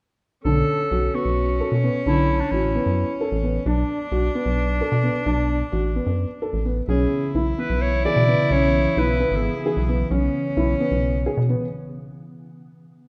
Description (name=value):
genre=contemporary instrumental, chamber music in an uneven meter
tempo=261 BPM (eighths)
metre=7/8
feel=straight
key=B dorian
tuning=A4 = 440 Hz
part: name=clear clarinet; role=melody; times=0.4-3.2, 6.9-9.9 s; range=D4 to D5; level=-26 LUFS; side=equal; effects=none
part: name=rich cello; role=second line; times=0.5-11.7 s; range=C#4 to E4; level=-30 LUFS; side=equal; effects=none
part: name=felt-muted upright piano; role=arpeggios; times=0.5-11.6 s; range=D3 to A4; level=-27 LUFS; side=equal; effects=none
part: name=rubbery square bass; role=bass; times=0.5-11.6 s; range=G#1 to B2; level=-25 LUFS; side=equal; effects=none
part: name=glassy FM pad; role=sustained chords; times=6.9-11.7 s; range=C#3 to B3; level=-32 LUFS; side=equal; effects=ensemble chorus, built-in reverb
room=moderate recital hall reverb, RT60 1.7 s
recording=dark, warm production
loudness=-22 LUFS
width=mono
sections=0.4-13.1 A section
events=stop 11.7-13.1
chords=0.4 Bm9; 6.9 C#m7/B; 11.7 N.C.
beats=| 0.45 0.68 0.91 1.14 1.37 1.60 1.83 | 2.06 2.29 2.52 2.75 2.97 3.20 3.43 | 3.66 3.89 4.12 4.35 4.58 4.80 5.03 | 5.26 5.49 5.72 5.96 6.19 6.42 6.66 | 6.89 7.12 7.36 7.59 7.82 8.05 8.28 | 8.51 8.74 8.97 9.20 9.43 9.65 9.88 | 10.11 10.34 10.57 10.80 11.03 11.25 11.48